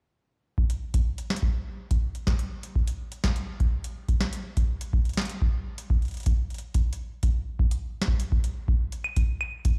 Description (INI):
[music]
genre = IDM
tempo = 124 BPM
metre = 4/4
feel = straight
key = none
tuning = none
[part]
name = electronic kick drum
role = drums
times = 0.6-9.7 s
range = none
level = -28 LUFS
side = equal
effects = none
[part]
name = booming analog drum machine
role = drums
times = 0.7-9.7 s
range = claves, hi-hat, snare drum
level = -36 LUFS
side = equal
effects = dub echo
[sound]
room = little or no reverb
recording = played on a big sound system in a bare room, large studio reverb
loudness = -28 LUFS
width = mono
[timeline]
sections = 0.6-9.8 A section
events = none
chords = none